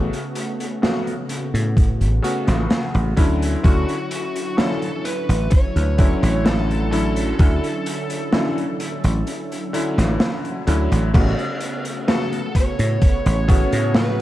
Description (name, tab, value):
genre	vaporwave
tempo	64 BPM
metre	4/4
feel	straight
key	A major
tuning	A4 = 440 Hz
part	bright electric grand piano	accompaniment	0.0-14.2 s	C#3 to F#4	-25 LUFS	left 1 dB	wide subtle chorus, analog delay
part	lush unison pad	sustained chords	0.0-14.2 s	C#3 to F#4	-28 LUFS	equal	chorus
part	dry thumbed slap bass	bass	0.0-14.2 s	A1 to A2	-19 LUFS	equal	none
part	raw garage drum kit	drums	0.1-14.2 s	crash cymbal, hi-hat, snare drum	-25 LUFS	equal	none
part	electronic kick drum	drums	1.8-13.7 s	none	-16 LUFS	equal	overdrive
part	biting lead guitar	melody	3.6-14.2 s	F#4 to C#5	-28 LUFS	equal	overdrive, tape echo
room	small room ambience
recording	none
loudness	-17 LUFS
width	side -14 dB against mid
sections	0.0-11.1 A section; 11.1-14.2 B section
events	kick drops out 9.3-11.1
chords	0.0 A69; 3.2 Dmaj9; 11.1 A69